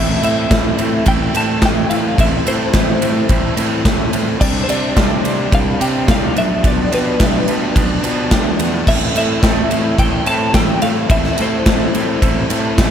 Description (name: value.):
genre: indie rock.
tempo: 108 BPM.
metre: 4/4.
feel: straight.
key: A minor.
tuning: A4 = 442 Hz.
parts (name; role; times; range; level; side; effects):
twelve-string electric guitar; melody; 0.0-12.5 s; B4 to A5; -21 LUFS; left 1 dB; tremolo, slapback echo, analog delay.
electric guitar through a small old amp; riff; 0.0-12.9 s; A2 to A4; -23 LUFS; right 7 dB; wide subtle chorus, slapback echo.
overdriven electric guitar; riff; 0.0-12.9 s; E3 to E4; -22 LUFS; left 6 dB; slapback echo.
fuzz picked electric bass; bass; 0.0-12.9 s; A1 to C3; -20 LUFS; equal; overdrive.
big rock drum kit; drums; 0.2-12.9 s; crash cymbal, kick drum, ride cymbal, snare drum; -16 LUFS; equal; none.
room: light reverb, small room ambience.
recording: none.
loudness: -13 LUFS.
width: side -8 dB against mid.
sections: 0.0-12.9 A section.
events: none.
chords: 0.0 Am; 4.4 Csus2; 6.4 G7/B; 8.9 Am.